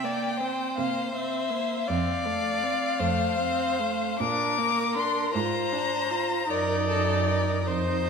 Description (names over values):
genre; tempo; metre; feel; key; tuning
classical, slow romantic movement for string quartet; 48-55 BPM (dotted quarters); 6/8; rubato; Bb major; A4 = 440 Hz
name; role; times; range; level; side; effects
warm violin; melody; 0.0-8.1 s; C5 to D6; -28 LUFS; left 6 dB; none
clear violin; second line; 0.0-8.1 s; A4 to D5; -31 LUFS; left 1 dB; none
clear viola; accompaniment; 0.0-8.1 s; A3 to F4; -31 LUFS; right 4 dB; none
rich cello; bass; 0.0-8.1 s; F2 to C3; -32 LUFS; right 4 dB; none
room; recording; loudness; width
wet scoring stage reverb, RT60 1.9 s; minimal, uncompressed stereo recording; -24 LUFS; side -5 dB against mid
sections
0.0-8.1 A section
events
none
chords
0.0 C7; 1.9 F; 4.2 Bb; 5.3 Bb7/Ab; 6.5 Ebm/Gb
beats
0.77 | 1.88 2.99 | 4.20 5.34 | 6.50 7.68